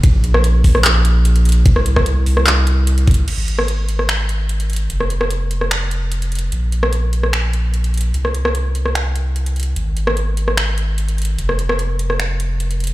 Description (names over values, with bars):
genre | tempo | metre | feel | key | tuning
future bass | 148 BPM | 4/4 | half-time | Ab major | A4 = 442 Hz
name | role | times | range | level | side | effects
saturated sub bass | bass | 0.0-12.9 s | F1 to C2 | -16 LUFS | equal | sidechain pumping
dubstep drum kit | drums | 0.0-12.9 s | crash cymbal, finger snaps, handclaps, hi-hat, ride cymbal, rim click | -20 LUFS | equal | none
electronic kick drum | drums | 0.0-3.2 s | none | -12 LUFS | equal | none
room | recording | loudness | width
little or no reverb | played on a big sound system in a bare room, large studio reverb | -14 LUFS | side -17 dB against mid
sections
0.0-3.3 A section; 3.3-12.9 B section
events
drop 0.0-3.3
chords
none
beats
| 0.04 0.44 0.85 1.25 | 1.66 2.06 2.47 2.87 | 3.28 3.68 4.09 4.49 | 4.90 5.30 5.71 6.12 | 6.52 6.93 7.33 7.74 | 8.14 8.55 8.95 9.36 | 9.77 10.17 10.57 10.98 | 11.39 11.79 12.20 12.60